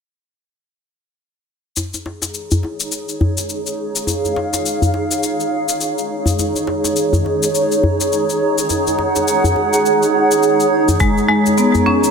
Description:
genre	organic downtempo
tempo	104 BPM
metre	4/4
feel	swing 59% on 16ths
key	unclear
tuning	A4 = 441 Hz
part	granular cloud pad	sustained chords	2.3-12.1 s	D#4 to F#5	-16 LUFS	right 2 dB	built-in reverb, sidechain pumping
part	cabasa	drums	1.8-12.1 s	none	-24 LUFS	left 5 dB	none
part	djembe	percussion	1.8-12.0 s	none	-20 LUFS	left 1 dB	none
part	marimba with hard mallets	arpeggios	11.0-12.0 s	G#3 to C#4	-13 LUFS	left 3 dB	ping-pong delay
part	electronic kick drum	drums	11.0-11.1 s	none	-17 LUFS	equal	none
room	moderate lush hall reverb, RT60 2.6 s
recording	none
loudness	-14 LUFS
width	side -6 dB against mid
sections	1.8-12.1 A section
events	none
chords	1.8 C#; 6.4 G#5; 11.0 C#

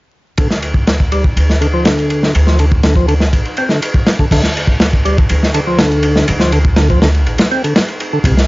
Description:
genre	breakbeat, breaks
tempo	122 BPM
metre	4/4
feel	straight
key	D minor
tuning	A4 = 440 Hz
part	percussive tonewheel organ	riff	0.4-8.4 s	C3 to C4	-17 LUFS	equal	chorus vibrato, slow rotary speaker, low-pass filter, dub echo
part	upright bass	bass	0.4-8.5 s	A1 to D2	-15 LUFS	equal	tube saturation, low-pass filter
part	crunchy breakbeat drum kit	drums	0.4-8.5 s	crash cymbal, kick drum, ride cymbal, snare drum	-13 LUFS	equal	none
room	small room ambience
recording	vinyl crackle, nothing above 7.5 kHz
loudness	-10 LUFS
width	side -20 dB against mid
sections	0.4-4.3 A section; 4.3-8.5 B section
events	filter sweep on upright bass 0.4-4.3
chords	0.4 Dm

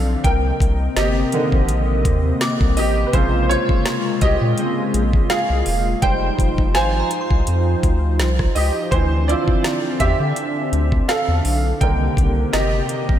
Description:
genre	contemporary R&B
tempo	83 BPM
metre	4/4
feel	swing 54% on 16ths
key	unclear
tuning	A4 = 440 Hz
part	clear concert grand piano	accompaniment	0.0-13.2 s	C3 to Ab5	-21 LUFS	right 2 dB	ensemble chorus
part	warm analog pad	sustained chords	0.0-13.2 s	C3 to Eb5	-24 LUFS	left 1 dB	chorus
part	round analog bass	bass	0.0-13.2 s	E1 to D3	-20 LUFS	equal	none
part	downlifter	sound effects	0.0-3.1 s	none	-44 LUFS	left 1 dB	none
part	glassy synth bell	texture	0.0-9.7 s	F5 to D6	-32 LUFS	equal	chorus, tremolo, analog delay
part	smooth R&B drum kit	drums	0.2-13.2 s	hi-hat, kick drum, rim click, snare drum	-21 LUFS	equal	none
room	light reverb, digital ambience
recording	none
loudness	-16 LUFS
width	side -10 dB against mid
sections	0.0-13.2 A section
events	grand piano solo 0.0-13.2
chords	0.2 Cm9; 3.1 Bbm9; 6.0 Fm9; 8.9 Dm9; 11.8 Cm9

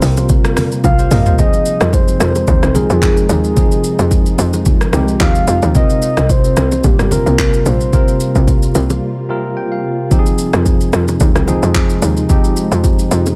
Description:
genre	amapiano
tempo	110 BPM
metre	4/4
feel	swing 55% on 16ths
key	F minor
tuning	A4 = 439 Hz
part	soft octave-layered synth lead	melody	0.0-8.5 s	G4 to F5	-21 LUFS	equal	chorus, delay
part	tine electric piano	accompaniment	0.0-13.4 s	C3 to G5	-21 LUFS	equal	none
part	ethereal airy pad	sustained chords	0.0-13.4 s	C3 to F4	-25 LUFS	equal	none
part	tight log drum bass	bass	0.0-13.4 s	G1 to F2	-18 LUFS	equal	none
part	deep house drum kit	drums	0.0-13.4 s	handclaps, hi-hat, kick drum, rim click, shaker, toms	-17 LUFS	equal	overdrive
part	bongos and congas	percussion	0.2-13.4 s	none	-24 LUFS	equal	none
room	little or no reverb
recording	none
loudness	-13 LUFS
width	mono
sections	0.0-1.4 A section; 1.4-13.4 B section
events	drop 0.0-1.4; drum fill 0.8-1.4; break 9.0-10.1; tine electric piano fill 9.3-10.1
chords	0.0 C7sus4; 1.4 Fm7; 5.7 C7sus4; 10.1 Fm7

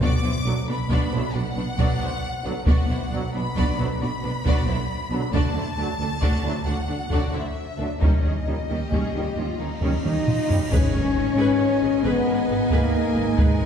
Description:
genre	cinematic, epic orchestral film score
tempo	90 BPM (dotted quarters)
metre	12/8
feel	straight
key	unclear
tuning	A4 = 440 Hz
part	dark symphonic violin section	melody	0.0-13.7 s	G#4 to D6	-33 LUFS	left 3 dB	none
part	warm symphonic violin section	second line	0.0-13.7 s	C#4 to G#5	-34 LUFS	left 3 dB	none
part	clear symphonic viola section	accompaniment	0.0-13.7 s	G3 to B4	-31 LUFS	right 1 dB	none
part	clear symphonic double bass section	bass	0.0-13.7 s	G#1 to D#2	-28 LUFS	right 3 dB	none
part	rich chamber cello section	bass	0.0-13.7 s	B2 to D#4	-30 LUFS	right 3 dB	none
part	taiko ensemble	drums	0.0-13.7 s	none	-24 LUFS	equal	none
part	timpani	percussion	0.0-0.6 s	B2	-30 LUFS	left 1 dB	none
part	clear trombone section	sustained chords	0.4-13.7 s	A#2 to D#4	-34 LUFS	right 3 dB	none
part	warm French horn section	sustained chords	0.5-13.7 s	G#3 to D#4	-27 LUFS	left 5 dB	none
part	cymbal swell and impact	sound effects	9.7-13.4 s	none	-34 LUFS	equal	none
part	concert flute	second line	10.0-13.7 s	G#4 to D#5	-33 LUFS	left 2 dB	none
room	wet scoring stage reverb, RT60 1.7 s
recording	heard from further back in the room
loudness	-20 LUFS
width	side -8 dB against mid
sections	0.0-10.7 A section; 10.7-13.7 B section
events	cymbal swell 9.7-10.7; drum fill 10.0-10.7; impact 10.7-13.4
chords	0.0 Bm; 5.3 D; 8.0 D#7; 10.7 G#m

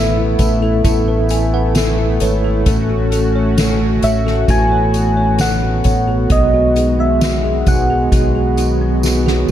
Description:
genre	pop ballad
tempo	66 BPM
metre	4/4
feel	straight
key	unclear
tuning	A4 = 440 Hz
part	soft struck synth lead	melody	0.0-9.0 s	D#5 to G#5	-19 LUFS	equal	chorus
part	bell-like tine electric piano	accompaniment	0.0-9.5 s	A3 to G#5	-20 LUFS	right 2 dB	fast stereo tremolo
part	chorused pulse-width pad	sustained chords	0.0-9.5 s	D#3 to F#4	-22 LUFS	equal	none
part	fingerpicked plugged-in steel-string acoustic guitar	arpeggios	0.0-9.5 s	B2 to A4	-24 LUFS	left 4 dB	none
part	fingered electric bass	bass	0.0-9.5 s	G#1 to B1	-17 LUFS	equal	none
part	soft-mallet drum kit	drums	0.4-9.5 s	hi-hat, kick drum, snare drum	-18 LUFS	equal	none
part	tambourine	percussion	0.4-9.5 s	none	-32 LUFS	right 3 dB	none
room	light reverb, studio ambience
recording	dark, warm production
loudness	-12 LUFS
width	side -11 dB against mid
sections	0.0-9.5 A section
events	tine electric piano fill 0.8-2.7; drum fill 9.0-9.5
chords	0.0 Asus2; 2.7 F#m/A; 6.3 B6

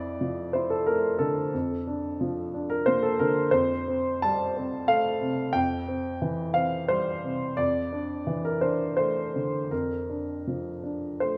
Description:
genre	neoclassical minimalist piano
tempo	79-93 BPM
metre	3/4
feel	rubato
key	unclear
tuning	A4 = 440 Hz
part	warm upright piano	solo	0.0-11.4 s	F2 to A5	-27 LUFS	equal	none
room	moderate scoring stage reverb, RT60 2.0 s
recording	none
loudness	-27 LUFS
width	mono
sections	0.0-11.4 A section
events	none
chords	0.0 Dmadd9/F; 1.5 Bbmaj7/F; 3.5 Fadd9; 5.5 C/F; 7.6 Dmadd9/F; 9.7 Bb/F

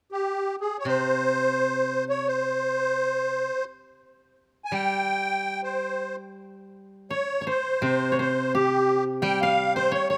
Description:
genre	japanese traditional, Japanese chamber music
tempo	free time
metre	none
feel	none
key	C miyako bushi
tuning	A4 = 440 Hz
part	musette accordion	melody	0.1-10.2 s	G4 to Ab5	-26 LUFS	equal	none
part	koto	accompaniment	0.9-10.2 s	C3 to G3	-33 LUFS	equal	none
part	koto	second line	7.1-10.2 s	G4 to G5	-30 LUFS	equal	none
room	light reverb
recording	close, detailed microphones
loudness	-25 LUFS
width	mono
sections	0.0-6.4 A section; 6.4-10.2 B section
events	none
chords	none

